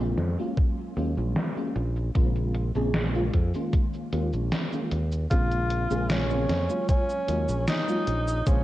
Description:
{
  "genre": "vaporwave",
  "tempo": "76 BPM",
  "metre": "4/4",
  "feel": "straight",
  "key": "Bb minor",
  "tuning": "A4 = 440 Hz",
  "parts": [
    { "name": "FM electric piano with soft pad layer", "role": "accompaniment", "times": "0.0-8.6 s", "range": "Db3 to C5", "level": "-30 LUFS", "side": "equal", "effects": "ensemble chorus, vintage 12-bit sampler grit, tape echo" },
    { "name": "fingered electric bass", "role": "bass", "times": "0.0-8.6 s", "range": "Bb1 to F2", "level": "-27 LUFS", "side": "equal", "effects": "none" },
    { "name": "gated 80s digital drum machine", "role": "drums", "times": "0.2-8.6 s", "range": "cabasa, hi-hat, snare drum", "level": "-31 LUFS", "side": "equal", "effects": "gated reverb, gated reverb snare, low-pass filter on hats, vintage 12-bit sampler grit, low-pass filter on perc, low-pass filter on snare, low-pass filter on room" },
    { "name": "electronic kick drum", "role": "drums", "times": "0.6-8.6 s", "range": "none", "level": "-23 LUFS", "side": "equal", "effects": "vintage 12-bit sampler grit" },
    { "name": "breathy tenor saxophone", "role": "melody", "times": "5.3-8.6 s", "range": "Db4 to F4", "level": "-28 LUFS", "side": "equal", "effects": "tape echo" }
  ],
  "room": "light reverb",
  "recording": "cassette tape",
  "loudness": "-24 LUFS",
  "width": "side -15 dB against mid",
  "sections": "0.0-8.6 A section",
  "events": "filter sweep on drum 0.0-8.6",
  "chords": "0.0 Bbm9; 0.6 Ebm11; 1.8 Bbm9; 3.7 Eb7sus4; 5.3 Bbm9; 6.9 Ebm11; 8.1 Bbm9"
}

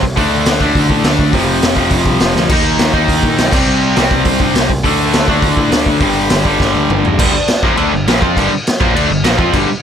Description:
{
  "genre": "punk rock",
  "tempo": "205 BPM",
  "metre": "4/4",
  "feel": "straight",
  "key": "G minor",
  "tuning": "A4 = 441 Hz",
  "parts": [
    { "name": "cranked stack guitar", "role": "riff", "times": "0.0-9.7 s", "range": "F2 to F4", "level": "-13 LUFS", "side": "left 1 dB", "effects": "overdrive" },
    { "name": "growling picked electric bass", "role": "bass", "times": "0.0-9.7 s", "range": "F1 to Bb2", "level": "-19 LUFS", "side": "equal", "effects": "overdrive" },
    { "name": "raw garage drum kit", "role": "drums", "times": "0.0-9.6 s", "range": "crash cymbal, hi-hat, kick drum, snare drum, toms", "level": "-15 LUFS", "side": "equal", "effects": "none" }
  ],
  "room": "little or no reverb",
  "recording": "none",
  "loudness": "-10 LUFS",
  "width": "side -8 dB against mid",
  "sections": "0.0-7.2 A section; 7.2-9.8 B section",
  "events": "drum fill 2.4, 6.6-7.2",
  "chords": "0.2 D5; 1.3 F5; 2.5 Eb5; 3.5 C5; 4.8 D5; 6.0 G5; 7.2 Gm"
}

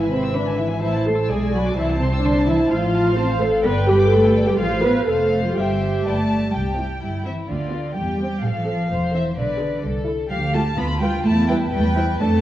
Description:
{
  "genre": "quick classical-period movement for string orchestra",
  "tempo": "127 BPM",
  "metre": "2/4",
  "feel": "straight",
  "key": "C major",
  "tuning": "A4 = 439 Hz",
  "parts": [
    { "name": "warm studio violin section", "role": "melody", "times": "0.0-12.4 s", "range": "E4 to A5", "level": "-31 LUFS", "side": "left 4 dB", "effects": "none" },
    { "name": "warm studio violin section", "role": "second line", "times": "0.0-12.4 s", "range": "B4 to E6", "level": "-26 LUFS", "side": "left 2 dB", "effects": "none" },
    { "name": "dark studio viola section", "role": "accompaniment", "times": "0.0-12.4 s", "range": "B3 to C5", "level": "-21 LUFS", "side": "equal", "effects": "none" },
    { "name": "warm studio cello section", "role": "bass", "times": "0.0-12.4 s", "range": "C3 to C4", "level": "-24 LUFS", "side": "right 1 dB", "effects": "none" },
    { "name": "warm studio double bass section", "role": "bass", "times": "0.0-12.4 s", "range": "E1 to F2", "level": "-24 LUFS", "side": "right 1 dB", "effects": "none" }
  ],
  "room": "moderate scoring stage reverb, RT60 1.6 s",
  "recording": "worn, warbling old tape, cassette tape, warbly pitch drift",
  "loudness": "-18 LUFS",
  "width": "side -13 dB against mid",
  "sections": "0.0-6.6 A section; 6.6-12.4 B section",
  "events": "none",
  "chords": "0.0 E/G#; 0.8 Am; 1.3 G#dim/B; 1.8 Am/C; 2.7 F/A; 3.6 G; 4.6 F/A; 5.6 C/G; 6.1 G5; 6.6 C; 7.5 Bdim/D; 8.0 C/E; 8.4 Am; 9.4 G#dim/B; 9.8 Am/C; 10.3 Dm; 10.8 Bdim/D; 11.3 Em; 11.7 C/E"
}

